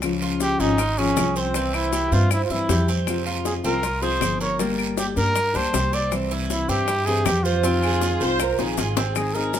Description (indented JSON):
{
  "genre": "latin, Cuban son and guajira",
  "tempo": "158 BPM",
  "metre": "4/4",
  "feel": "straight",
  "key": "F minor",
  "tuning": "A4 = 440 Hz",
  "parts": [
    { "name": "nylon-string guitar", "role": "accompaniment", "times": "0.0-9.6 s", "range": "C3 to Ab4", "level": "-27 LUFS", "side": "left 4 dB", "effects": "none" },
    { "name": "upright bass", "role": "bass", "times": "0.0-9.6 s", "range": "G1 to G2", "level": "-25 LUFS", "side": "equal", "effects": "none" },
    { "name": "bongos", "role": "percussion", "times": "0.0-9.6 s", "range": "none", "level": "-29 LUFS", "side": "left 7 dB", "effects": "none" },
    { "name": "claves", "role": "percussion", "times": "0.0-9.4 s", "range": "none", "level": "-34 LUFS", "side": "left 5 dB", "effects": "none" },
    { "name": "guiro", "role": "percussion", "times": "0.0-9.6 s", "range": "none", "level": "-34 LUFS", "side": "right 6 dB", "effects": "none" },
    { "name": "maracas", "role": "percussion", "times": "0.0-9.6 s", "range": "none", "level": "-34 LUFS", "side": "left 9 dB", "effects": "none" },
    { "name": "Cuban tres", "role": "arpeggios", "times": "0.2-9.6 s", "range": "Bb3 to C5", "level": "-28 LUFS", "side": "right 6 dB", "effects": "none" },
    { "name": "breathy trumpet", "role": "melody", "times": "0.4-9.6 s", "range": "C4 to D5", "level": "-24 LUFS", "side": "equal", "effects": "none" },
    { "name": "rich studio violin section", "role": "second line", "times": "7.8-9.1 s", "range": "Ab4 to C5", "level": "-28 LUFS", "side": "right 1 dB", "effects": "none" }
  ],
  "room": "moderate large studio reverb, RT60 0.9 s",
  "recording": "minimal, uncompressed stereo recording",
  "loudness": "-19 LUFS",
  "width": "side -10 dB against mid",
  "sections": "0.0-9.2 A section",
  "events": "drum fill 8.6-9.2",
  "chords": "0.0 Db; 1.6 C; 3.1 Fm; 4.6 Gm; 6.1 C; 7.6 Fm7"
}